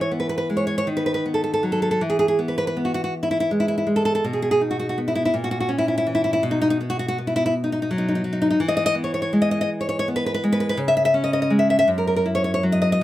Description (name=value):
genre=romantic piece for solo classical guitar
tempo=54 BPM (dotted quarters)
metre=6/8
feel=rubato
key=E major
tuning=A4 = 440 Hz
part: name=nylon-string guitar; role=solo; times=0.0-13.0 s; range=F#2 to E5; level=-19 LUFS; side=equal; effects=none
room=light reverb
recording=none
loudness=-19 LUFS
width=side -14 dB against mid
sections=0.0-13.0 A section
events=none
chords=0.0 E; 0.9 B/D#; 2.0 E; 4.2 B; 5.3 A#dim; 6.4 B5; 8.6 E; 10.8 C#5; 11.9 F#7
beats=0.86 | 2.01 3.13 | 4.24 5.34 | 6.43 7.52 | 8.57 9.68 | 10.77 11.89 | 13.00